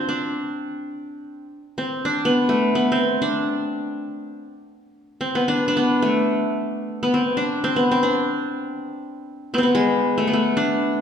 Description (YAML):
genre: Turkish makam ensemble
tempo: free time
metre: none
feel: none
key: D makam nikriz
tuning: A4 = 440 Hz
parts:
  - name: qanun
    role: solo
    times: 0.0-11.0 s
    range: G#3 to F4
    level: -20 LUFS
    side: left 1 dB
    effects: none
room: wet recital hall reverb, RT60 1.7 s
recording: recorded in a church or concert hall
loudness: -19 LUFS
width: side -8 dB against mid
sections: 0.0-11.0 A section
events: none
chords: none